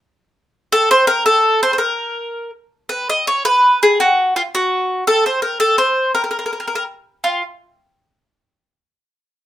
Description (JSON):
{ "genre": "italian folk", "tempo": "111 BPM (dotted quarters)", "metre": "6/8", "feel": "straight", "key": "Bb harmonic minor", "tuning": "A4 = 440 Hz", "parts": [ { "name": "mandolin", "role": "solo", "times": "0.7-7.4 s", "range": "F4 to Eb5", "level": "-14 LUFS", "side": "equal", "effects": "none" } ], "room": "moderate small room reverb, RT60 0.6 s", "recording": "none", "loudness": "-14 LUFS", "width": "side -13 dB against mid", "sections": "0.0-2.9 A section; 2.9-7.2 B section; 7.2-8.3 C section", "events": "none", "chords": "none" }